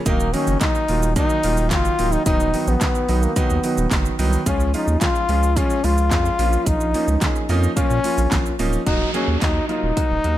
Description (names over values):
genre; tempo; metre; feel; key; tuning
dance-pop; 109 BPM; 4/4; straight; Eb minor; A4 = 441 Hz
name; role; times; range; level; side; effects
warm trombone; melody; 0.1-10.4 s; Bb3 to F4; -22 LUFS; left 4 dB; ping-pong delay
clear grand piano; accompaniment; 0.1-10.4 s; Eb3 to Ab4; -24 LUFS; right 4 dB; sidechain pumping
saturated sub bass; bass; 0.1-10.4 s; D1 to Bb2; -21 LUFS; equal; sidechain pumping
pop drum kit; drums; 0.1-10.4 s; handclaps, hi-hat, kick drum, shaker, snare drum; -22 LUFS; equal; none
downlifter; sound effects; 8.9-10.4 s; none; -29 LUFS; equal; none
room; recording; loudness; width
little or no reverb; none; -17 LUFS; side -13 dB against mid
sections
0.0-8.9 A section; 8.9-10.4 B section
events
none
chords
0.1 Ebm; 2.3 B/D#; 4.5 Db; 6.4 Bbm; 8.9 Ebm